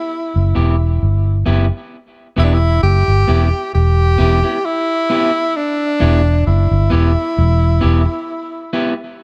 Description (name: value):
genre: roots reggae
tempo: 66 BPM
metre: 4/4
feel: straight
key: E minor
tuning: A4 = 440 Hz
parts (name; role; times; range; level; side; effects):
- clear tenor saxophone; melody; 0.0-8.7 s; D4 to G4; -21 LUFS; equal; tape echo, plate reverb
- vintage muted fingered electric bass; bass; 0.4-8.1 s; E1 to G1; -15 LUFS; equal; none
- electric guitar at the edge of break-up; accompaniment; 0.6-8.9 s; B3 to G4; -24 LUFS; equal; tape echo, plate reverb
room: light reverb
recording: dark, warm production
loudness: -15 LUFS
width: mono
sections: 0.0-1.9 A section; 1.9-9.2 B section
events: none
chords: 0.0 Em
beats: 0.10 1.01 | 1.92 2.83 3.73 4.64 | 5.55 6.46 7.37 8.28